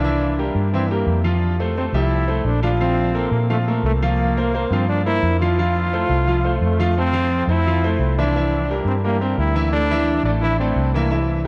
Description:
latin, salsa; 173 BPM; 4/4; straight; F major; A4 = 440 Hz
bright trombone; melody; 0.0-11.3 s; A3 to F4; -25 LUFS; equal
bright grand piano; accompaniment; 0.0-11.5 s; E3 to F5; -25 LUFS; equal
vintage muted fingered electric bass; bass; 0.0-11.5 s; A1 to Bb2; -23 LUFS; equal
wet cathedral reverb, RT60 6.0 s; in a vast, echoing space; -19 LUFS; mono
0.0-7.0 A section; 7.0-11.5 B section
0.0 C7; 1.4 Fmaj9; 2.8 Bbsus2; 4.2 C7sus4; 5.6 F; 7.0 Fmaj7; 8.3 C7; 9.7 Dsus2
| 0.03 0.37 0.72 1.07 | 1.41 1.76 2.11 2.45 | 2.80 3.15 3.49 3.84 | 4.19 4.53 4.88 5.23 | 5.57 5.92 6.26 6.61 | 6.96 7.30 7.65 7.99 | 8.34 8.69 9.03 9.38 | 9.72 10.07 10.41 10.76 | 11.10 11.45

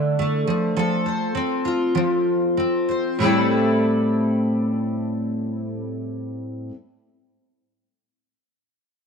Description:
pop; 92-106 BPM; 4/4; straight; A minor; A4 = 440 Hz
fingerpicked steel-string acoustic guitar; accompaniment; 0.0-6.8 s; A2 to C5; -20 LUFS; equal; double-tracked left and right
light reverb, small room ambience; 1960s-style stereo; -19 LUFS; side -5 dB against mid
0.0-3.2 A section; 3.2-5.8 B section
slowing down 0.0-3.2
0.5 F; 3.2 Am7
0.19 | 0.77 1.35 1.96 2.58 | 3.21 3.86 4.51 5.16

